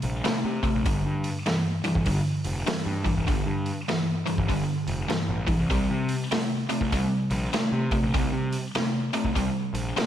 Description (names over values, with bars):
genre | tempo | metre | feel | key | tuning
blues rock power trio and southern rock | 99 BPM | 4/4 | swing 62% on 8ths | G minor | A4 = 440 Hz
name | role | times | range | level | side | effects
cranked stack guitar | riff | 0.0-10.1 s | G2 to A3 | -26 LUFS | equal | overdrive, slapback echo
fuzz picked electric bass | bass | 0.0-9.9 s | F1 to C3 | -30 LUFS | equal | overdrive
vintage drum kit | drums | 0.0-10.1 s | hi-hat, kick drum, snare drum | -30 LUFS | equal | none
room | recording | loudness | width
moderate lush hall reverb, RT60 1.8 s, studio reverb | none | -24 LUFS | side -10 dB against mid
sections
0.0-10.1 A section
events
none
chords
0.0 C5; 0.9 G5; 5.7 C5